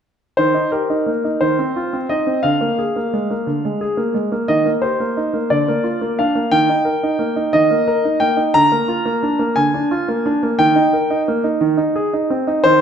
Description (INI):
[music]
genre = classical-period piano sonatina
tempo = 59 BPM (dotted quarters)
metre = 6/8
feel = rubato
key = Eb major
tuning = A4 = 440 Hz
[part]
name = clear concert grand piano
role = solo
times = 0.4-12.8 s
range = D3 to Bb5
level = -15 LUFS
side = equal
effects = none
[sound]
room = moderate recital hall reverb, RT60 1.5 s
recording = none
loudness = -15 LUFS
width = side -8 dB against mid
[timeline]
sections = 0.4-12.8 A section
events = none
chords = 0.4 Eb; 1.4 F5/Eb; 2.5 Bb7/D; 4.5 Eb; 5.5 Bb/D; 6.5 Eb; 8.5 Bb/D; 10.6 Eb; 11.6 Ab/Eb